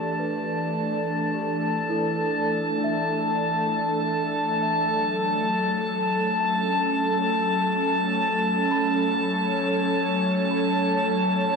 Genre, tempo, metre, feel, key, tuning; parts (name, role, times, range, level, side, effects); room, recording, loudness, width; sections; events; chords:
ambient; free time; A4 = 440 Hz
airy breathy pad; sustained chords; 0.0-11.6 s; E3 to D5; -25 LUFS; right 1 dB; chorus
celesta; arpeggios; 0.0-11.6 s; D4 to B5; -34 LUFS; right 1 dB; ping-pong delay
drifting glass-harmonics texture; texture; 0.0-11.6 s; A5; -25 LUFS; left 2 dB; chorus, built-in reverb
wet huge ambient reverb, RT60 7.3 s; dreamy mix soaked in reverb; -22 LUFS; side -4 dB against mid
0.0-11.6 A section
fade-in on analog synth pad 0.0-11.6; fade-in on celesta 0.0-11.6
0.0 Dsus2; 4.8 F#m